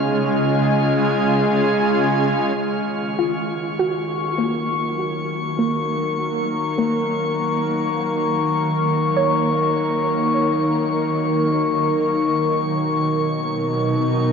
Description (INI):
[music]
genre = ambient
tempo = 50 BPM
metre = 4/4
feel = straight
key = Eb minor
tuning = A4 = 440 Hz
[part]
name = shimmering ambient pad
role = sustained chords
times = 0.0-14.3 s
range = B2 to Ab5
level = -21 LUFS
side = equal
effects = chorus, built-in reverb
[part]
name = soft round pluck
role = arpeggios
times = 0.0-14.3 s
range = Bb3 to D#6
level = -26 LUFS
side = right 1 dB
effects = chorus, diffuse ambient delay
[part]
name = drifting glass-harmonics texture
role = texture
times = 0.0-14.3 s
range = Db6 to F6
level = -25 LUFS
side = left 5 dB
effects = chorus, built-in reverb
[part]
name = analog drone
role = drone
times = 2.6-14.3 s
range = Eb3 to Bb4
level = -22 LUFS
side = equal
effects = chorus
[sound]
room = wet huge ambient reverb, RT60 7.3 s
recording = worn, warbling old tape, cassette tape, warbly pitch drift, nothing above 7.9 kHz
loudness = -18 LUFS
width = side -6 dB against mid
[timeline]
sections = 0.0-2.6 A section; 2.6-14.3 B section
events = filter sweep on ambient pad 0.0-2.6; fade-in on ambient pad 2.6-14.3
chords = 0.0 Db; 2.6 Ebm7; 12.1 Badd9